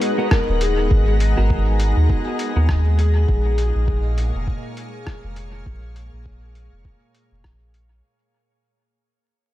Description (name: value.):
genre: ambient dub.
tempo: 101 BPM.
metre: 4/4.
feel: swing 57% on 16ths.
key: unclear.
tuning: A4 = 440 Hz.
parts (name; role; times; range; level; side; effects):
electric slide guitar; melody; 0.0-3.7 s; G#4 to B4; -26 LUFS; left 3 dB; dub echo.
soft additive organ-like pad; sustained chords; 0.0-8.0 s; A#2 to A#5; -28 LUFS; left 1 dB; ensemble chorus, built-in reverb.
clean electric guitar; stabs; 0.0-2.7 s; B3 to B4; -29 LUFS; right 2 dB; lush chorus, dub echo.
lo-fi sampler-style drum kit; drums; 0.0-7.9 s; hi-hat, rim click; -28 LUFS; equal; overdrive, dub echo.
bubbling stepped-filter texture; texture; 0.0-8.1 s; G#3 to G#4; -33 LUFS; left 2 dB; chorus, built-in reverb.
electronic kick drum; drums; 0.3-7.6 s; none; -21 LUFS; equal; overdrive.
soft dub sub bass; bass; 0.5-8.0 s; D#1 to D#2; -18 LUFS; equal; none.
room: light reverb.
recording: vinyl crackle.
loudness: -16 LUFS.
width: side -14 dB against mid.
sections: 0.0-8.0 A section.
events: fade-out 0.0-8.0.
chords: 0.0 G#m9; 3.3 A#m7.